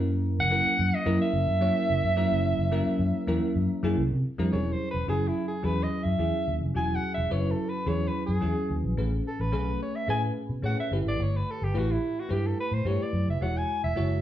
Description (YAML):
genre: polished 1980s jazz-funk pop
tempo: 108 BPM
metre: 4/4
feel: straight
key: E major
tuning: A4 = 442 Hz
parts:
  - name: bell-like FM electric piano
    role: accompaniment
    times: 0.0-14.2 s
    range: F#3 to C#5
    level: -30 LUFS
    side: equal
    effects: chorus
  - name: vintage muted fingered electric bass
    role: bass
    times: 0.0-14.2 s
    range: E1 to C3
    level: -28 LUFS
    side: equal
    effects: none
  - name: mellow soprano saxophone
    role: melody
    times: 0.4-14.2 s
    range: E4 to G#5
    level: -30 LUFS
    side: right 1 dB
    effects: none
room: wet large studio reverb, RT60 0.8 s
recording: band playing live in one room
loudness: -25 LUFS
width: side -12 dB against mid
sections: 0.0-4.5 A section; 4.5-14.2 B section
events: soprano saxophone solo 4.5-14.2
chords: 0.0 F#7; 4.0 C9; 4.5 E69; 9.0 Amaj9; 10.9 G69; 13.4 E69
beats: | 0.10 0.65 1.21 1.76 | 2.31 2.87 3.42 3.98 | 4.53 5.09 5.64 6.20 | 6.75 7.31 7.86 8.42 | 8.98 9.53 10.09 10.64 | 11.20 11.75 12.31 12.87 | 13.42 13.98